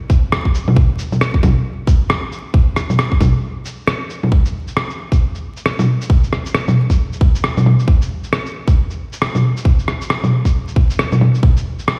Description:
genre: future garage.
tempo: 135 BPM.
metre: 4/4.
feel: swing 60% on 16ths.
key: none.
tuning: none.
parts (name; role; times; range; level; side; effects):
electronic kick drum; drums; 0.1-11.5 s; none; -14 LUFS; equal; small room ambience.
electronic shaker, rim click and bongos; drums; 0.1-12.0 s; none; -19 LUFS; equal; small room ambience.
room: light reverb.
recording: played on a big sound system in a bare room, stone room reverb, vinyl crackle.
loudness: -16 LUFS.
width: mono.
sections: 0.0-4.3 A section; 4.3-12.0 B section.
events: break 3.4-4.3.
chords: none.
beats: 0.32 | 0.77 1.21 1.66 2.10 | 2.54 2.99 3.43 3.88 | 4.32 4.77 5.21 5.66 | 6.10 6.54 6.99 7.43 | 7.88 8.32 8.77 9.21 | 9.65 10.10 10.54 10.99 | 11.43 11.88.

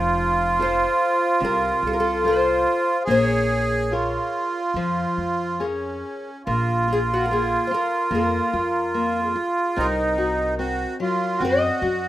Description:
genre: fado-style ballad.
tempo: 73 BPM.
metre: 4/4.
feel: rubato.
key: Bb minor.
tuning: A4 = 438 Hz.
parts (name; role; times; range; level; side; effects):
accordion; second line; 0.0-12.1 s; Db4 to Ab4; -22 LUFS; right 2 dB; light tremolo tuning.
nylon-string guitar; accompaniment; 0.0-12.1 s; C3 to Db5; -28 LUFS; left 4 dB; none.
upright bass; bass; 0.0-12.1 s; F1 to Gb2; -29 LUFS; equal; none.
fingerpicked twelve-string acoustic guitar; melody; 0.6-12.1 s; Gb4 to Eb5; -25 LUFS; left 2 dB; none.
room: studio reverb.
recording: rough home demo mix.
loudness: -19 LUFS.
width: side -14 dB against mid.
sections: 0.0-6.5 A section; 6.5-12.1 B section.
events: none.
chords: 0.0 F; 3.1 Bbm7; 6.5 Bb5; 9.8 Cm7b5.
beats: 0.60 1.42 2.25 | 3.08 3.91 4.75 5.61 | 6.47 7.30 8.12 8.95 | 9.77 10.59 11.40.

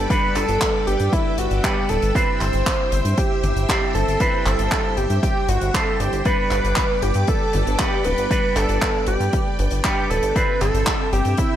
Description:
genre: italo disco.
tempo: 117 BPM.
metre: 4/4.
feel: straight.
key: G major.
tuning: A4 = 440 Hz.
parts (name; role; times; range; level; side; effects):
wide unison lead; melody; 0.0-11.6 s; E4 to C5; -23 LUFS; right 1 dB; tape echo.
string machine, full ensemble; sustained chords; 0.0-11.6 s; C4 to E6; -28 LUFS; equal; ensemble chorus.
electric guitar with an envelope filter; stabs; 0.0-11.6 s; G2 to C5; -27 LUFS; right 2 dB; none.
chorused synth bass; bass; 0.0-11.3 s; D1 to G2; -22 LUFS; equal; tube saturation.
damped 70s drum kit; drums; 0.1-11.5 s; handclaps, hi-hat, toms; -26 LUFS; equal; gated reverb.
electronic kick drum; drums; 0.1-11.5 s; none; -24 LUFS; equal; overdrive.
room: light reverb, studio reverb.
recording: none.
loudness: -18 LUFS.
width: side -11 dB against mid.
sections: 0.0-11.6 A section.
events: none.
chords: 0.0 G; 2.2 C/G; 6.3 G; 10.4 C/G.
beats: | 0.10 0.61 1.13 1.64 | 2.15 2.67 3.18 3.69 | 4.20 4.72 5.23 5.74 | 6.26 6.77 7.28 7.79 | 8.31 8.82 9.33 9.85 | 10.36 10.87 11.38.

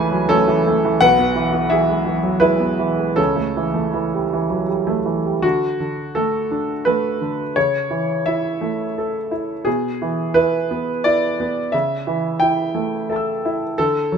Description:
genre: neoclassical minimalist piano.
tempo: 78-90 BPM.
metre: 3/4.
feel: rubato.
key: A major.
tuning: A4 = 440 Hz.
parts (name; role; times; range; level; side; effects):
clear concert grand piano; solo; 0.0-14.2 s; B1 to E6; -17 LUFS; right 1 dB; none.
room: moderate studio reverb, RT60 0.9 s.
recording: band playing live in one room.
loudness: -17 LUFS.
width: side -6 dB against mid.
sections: 0.0-5.4 A section; 5.4-14.2 B section.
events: none.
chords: 0.0 A/C#; 1.0 E/B; 3.2 A7/C#; 5.4 D; 7.6 A/C#; 9.7 E/B; 11.7 A7/C#.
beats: 0.28 | 1.01 1.72 2.43 | 3.18 3.94 4.69 | 5.43 6.15 6.85 | 7.55 8.26 8.96 | 9.66 10.36 11.05 | 11.73 12.41 13.09 | 13.77.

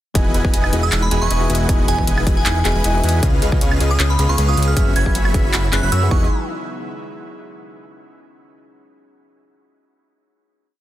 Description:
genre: future bass.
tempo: 156 BPM.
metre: 4/4.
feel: swing 53% on 16ths, half-time.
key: E major.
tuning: A4 = 440 Hz.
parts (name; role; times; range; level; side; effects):
bell-like tine electric piano; accompaniment; 0.1-6.3 s; C#3 to F#5; -26 LUFS; left 4 dB; sidechain pumping, dub echo.
airy breathy pad; sustained chords; 0.2-6.3 s; C#3 to E#4; -32 LUFS; right 1 dB; chorus, sidechain pumping.
Celtic harp; arpeggios; 0.2-7.0 s; C#4 to D#5; -31 LUFS; left 3 dB; sidechain pumping, dub echo.
airy dreamy lead; arpeggios; 0.2-6.3 s; E#5 to B5; -31 LUFS; equal; chorus, sidechain pumping.
dense compressed supersaw; riff; 0.2-6.3 s; C#4 to B5; -27 LUFS; right 1 dB; sidechain pumping, dub echo.
fat analog bass; bass; 0.2-6.3 s; E1 to F#2; -19 LUFS; equal; sidechain pumping.
big-room dance drum kit; drums; 0.2-6.0 s; handclaps, hi-hat, woodblock; -23 LUFS; right 1 dB; none.
electronic kick drum; drums; 0.2-6.2 s; none; -18 LUFS; equal; none.
glassy synth bell; melody; 0.8-6.3 s; G#5 to G#6; -25 LUFS; right 2 dB; chorus, phaser, sidechain pumping, dub echo.
room: little or no reverb.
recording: dense, heavily limited modern master.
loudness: -14 LUFS.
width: side -13 dB against mid.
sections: 0.2-6.3 drop; 6.3-7.8 final hit.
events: drop 0.2-6.3.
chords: 0.2 Emaj7; 3.2 C#7; 4.8 F#7sus4; 6.1 Emaj7; 6.3 N.C..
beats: | 0.15 0.54 0.92 1.31 | 1.69 2.08 2.46 2.84 | 3.23 3.61 4.00 4.38 | 4.77 5.15 5.54 5.92 | 6.31 6.69.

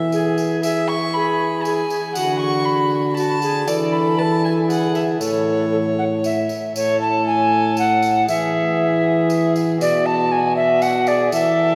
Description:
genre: classical, renaissance-style consort dance.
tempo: 118 BPM.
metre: 3/4.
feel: straight.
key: A major.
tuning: A4 = 441 Hz.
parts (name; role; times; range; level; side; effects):
rich violin; second line; 0.0-11.8 s; F#4 to C#6; -26 LUFS; equal; none.
warm trombone; bass; 0.0-11.8 s; A2 to E3; -23 LUFS; equal; none.
alto recorder; melody; 0.1-11.8 s; F#4 to A5; -22 LUFS; equal; none.
tambourine; percussion; 0.1-11.6 s; none; -38 LUFS; equal; none.
room: wet cathedral reverb, RT60 4.5 s.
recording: heard from further back in the room.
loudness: -19 LUFS.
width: mono.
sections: 0.0-6.8 A section; 6.8-11.8 A section.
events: none.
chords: 0.1 E; 2.2 D; 3.7 Esus4; 5.2 A; 8.3 E; 9.8 B5.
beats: 0.14 | 0.64 1.15 1.65 | 2.16 2.67 3.17 | 3.67 4.18 4.69 | 5.21 5.72 6.24 | 6.75 7.27 7.78 | 8.28 8.79 9.30 | 9.80 10.31 10.82 | 11.33.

